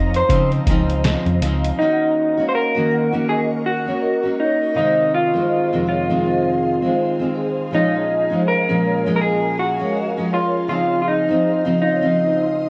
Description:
indie pop, bedroom pop; 81 BPM; 4/4; swing 60% on 16ths; A4 = 441 Hz
electric guitar through a small old amp; melody; 0.0-12.7 s; Eb4 to Eb5; -21 LUFS; equal; lush chorus
fingerpicked steel-string acoustic guitar; accompaniment; 0.0-12.7 s; F2 to Gb4; -24 LUFS; equal; lush chorus, warbly pitch drift
ethereal airy pad; sustained chords; 0.0-12.7 s; Gb4 to Eb6; -33 LUFS; equal; ensemble chorus, built-in reverb, phaser
vintage muted fingered electric bass; bass; 0.0-1.7 s; Db2 to Db3; -22 LUFS; equal
lo-fi sampler-style drum kit; drums; 0.1-1.8 s; hi-hat, kick drum, snare drum; -23 LUFS; equal
vibraphone with soft mallets; second line; 1.8-12.4 s; Ab4 to Gb5; -29 LUFS; equal; ensemble chorus, tape echo
light reverb, digital ambience; worn, warbling old tape, cassette tape, warbly pitch drift; -19 LUFS; mono
0.0-1.8 A section; 1.8-12.7 B section
clean electric guitar solo 0.0-1.8
0.0 Dbmaj9; 1.8 Ebm7; 4.8 Fm7; 7.7 Bbm7; 10.7 Dbmaj9
0.30 1.04 | 1.78 2.52 3.27 4.01 | 4.75 5.49 6.24 6.98 | 7.72 8.46 9.20 9.94 | 10.68 11.43 12.17

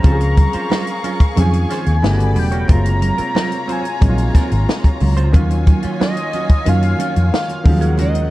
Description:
lush 1970s-style soul; 91 BPM; 4/4; straight; Eb dorian; A4 = 442 Hz
fat analog lead; melody; 0.0-8.3 s; Eb5 to Bb5; -24 LUFS; equal; phaser
warm studio violin section; second line; 0.0-8.3 s; Db4 to Db6; -28 LUFS; left 2 dB
warm concert grand piano; accompaniment; 0.0-8.3 s; C3 to Ab4; -23 LUFS; left 1 dB
clean electric guitar; riff; 0.0-8.2 s; Gb3 to Db5; -28 LUFS; right 6 dB
vintage muted fingered electric bass; bass; 0.0-8.3 s; Fb1 to Gb2; -15 LUFS; equal
compact cocktail drum kit; drums; 0.0-8.3 s; hi-hat, kick drum, snare drum; -14 LUFS; equal
congas; percussion; 0.0-8.3 s; -26 LUFS; right 5 dB
small room reverb; dark, warm production; -13 LUFS; side -17 dB against mid
0.0-8.3 A section
0.0 Dbmaj7; 2.0 Gmaj9#11; 2.7 Gbmaj9#11; 5.3 Ebm9; 7.7 Ebm11
| 0.05 0.71 1.37 2.03 | 2.69 3.35 4.02 4.68 | 5.34 6.00 6.66 7.32 | 7.98

